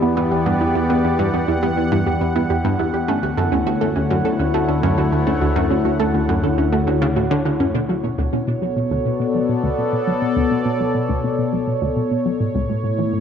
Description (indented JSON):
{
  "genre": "ambient, sequencer-driven space music",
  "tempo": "103 BPM",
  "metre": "4/4",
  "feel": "straight",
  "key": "D major",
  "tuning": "A4 = 440 Hz",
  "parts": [
    { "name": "sweeping resonant pad", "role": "sustained chords", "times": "0.0-13.2 s", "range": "A2 to F#5", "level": "-20 LUFS", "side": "left 2 dB", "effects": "chorus" },
    { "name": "wide unison pluck", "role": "arpeggios", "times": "0.0-7.7 s", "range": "B3 to F#5", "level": "-24 LUFS", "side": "right 4 dB", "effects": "auto-pan, tape echo" },
    { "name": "analog pluck", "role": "riff", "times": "0.0-13.2 s", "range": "C#2 to B3", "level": "-22 LUFS", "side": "equal", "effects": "chorus, tape echo" },
    { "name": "analog drone", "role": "bass", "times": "0.0-7.7 s", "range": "D2 to E2", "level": "-26 LUFS", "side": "equal", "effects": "chorus" }
  ],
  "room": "wet spring reverb, RT60 3.0 s",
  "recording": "echo-heavy mix",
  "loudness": "-17 LUFS",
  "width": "side -8 dB against mid",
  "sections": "0.0-7.7 A section; 7.7-13.2 B section",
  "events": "filter sweep on synth arpeggio sound 7.7-13.2",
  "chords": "0.0 Em7; 3.1 Dmaj7; 12.4 A",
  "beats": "0.17 | 0.76 1.34 1.92 2.50 | 3.08 3.67 4.25 4.83 | 5.42 6.00 6.58 7.16 | 7.75 8.33 8.91 9.49 | 10.07 10.66 11.24 11.82 | 12.40 12.99"
}